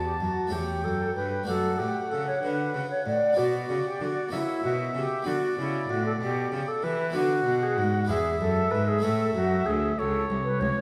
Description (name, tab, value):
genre	classical, baroque-style sonata movement with continuo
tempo	64 BPM (dotted quarters)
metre	6/8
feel	straight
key	A major from 7.2 s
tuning	A4 = 440 Hz
part	warm oboe	melody	0.0-10.8 s	C#5 to A5	-35 LUFS	equal	none
part	mellow hollow silver concert flute	second line	0.0-10.8 s	E4 to D5	-30 LUFS	equal	none
part	harpsichord	accompaniment	0.0-10.8 s	C2 to A4	-34 LUFS	equal	none
part	clear cello	bass	0.0-10.7 s	C2 to E3	-34 LUFS	equal	none
room	wet recital hall reverb, RT60 1.5 s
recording	none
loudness	-27 LUFS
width	mono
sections	0.0-10.8 A section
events	none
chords	0.0 D; 0.5 A7/E; 1.5 D/F#; 3.4 Bm; 4.3 F#7; 5.3 Bm; 8.1 E7; 9.0 A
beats	0.52 | 1.48 2.43 | 3.38 4.33 | 5.27 6.21 | 7.16 8.10 | 9.04 9.98